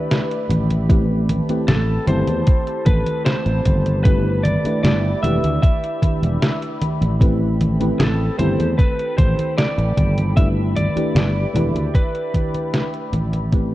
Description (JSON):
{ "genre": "vaporwave", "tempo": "76 BPM", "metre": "4/4", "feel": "straight", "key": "G major", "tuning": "A4 = 439 Hz", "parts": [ { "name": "lightly driven lead guitar", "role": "melody", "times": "0.0-13.1 s", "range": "A4 to E5", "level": "-26 LUFS", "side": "equal", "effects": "tape echo" }, { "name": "mellow FM electric piano", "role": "accompaniment", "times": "0.0-13.7 s", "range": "A3 to B4", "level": "-25 LUFS", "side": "equal", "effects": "lush chorus" }, { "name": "warbly tape-like pad", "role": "sustained chords", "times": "0.0-13.7 s", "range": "C4 to B5", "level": "-32 LUFS", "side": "equal", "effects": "chorus, built-in reverb, phaser" }, { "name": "detuned 8-bit digital drum machine", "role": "drums", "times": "0.1-13.7 s", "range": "congas, hi-hat, snare drum", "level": "-22 LUFS", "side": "equal", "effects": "none" }, { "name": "sustaining fretless electric bass", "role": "bass", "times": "0.5-13.7 s", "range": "E1 to E2", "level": "-20 LUFS", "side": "equal", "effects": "none" }, { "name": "electronic kick drum", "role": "drums", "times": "0.9-13.7 s", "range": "none", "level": "-16 LUFS", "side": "equal", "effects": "none" } ], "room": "light reverb", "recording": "cassette tape", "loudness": "-16 LUFS", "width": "side -16 dB against mid", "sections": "0.0-13.7 A section", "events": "fade-out 11.4-13.7", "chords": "0.0 G6; 0.9 Am9; 4.1 G6; 7.2 Am9; 10.4 G6" }